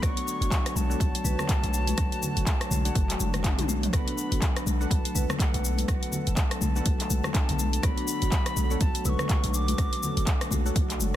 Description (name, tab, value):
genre	afro house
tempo	123 BPM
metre	4/4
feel	swing 58% on 16ths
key	unclear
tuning	A4 = 442 Hz
part	wooden flute	melody	0.0-10.5 s	F#5 to E6	-36 LUFS	left 2 dB	tape echo
part	warm analog pad	sustained chords	0.0-11.2 s	D3 to C#5	-39 LUFS	right 3 dB	chorus, sidechain pumping
part	marimba with medium mallets	arpeggios	0.0-11.0 s	F#3 to B4	-35 LUFS	left 1 dB	sidechain pumping, tape echo
part	warm analog keys	stabs	0.0-11.2 s	C#4 to F#5	-39 LUFS	equal	chorus, vintage 12-bit sampler grit, sidechain pumping, tape echo
part	warm 808-style bass	bass	0.0-11.2 s	F#1 to B1	-28 LUFS	equal	tube saturation, sidechain pumping
part	deep house drum kit	drums	0.0-11.1 s	handclaps, hi-hat, rim click, shaker, toms	-31 LUFS	left 1 dB	none
part	electronic kick drum	drums	0.0-10.9 s	none	-26 LUFS	equal	none
part	congas	percussion	0.8-11.2 s	none	-35 LUFS	left 4 dB	none
room	little or no reverb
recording	dense, heavily limited modern master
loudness	-24 LUFS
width	side -12 dB against mid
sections	0.0-11.2 A section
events	drum fill 3.4-3.9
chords	0.0 Dmaj7; 3.9 Bm7; 7.8 Dmaj7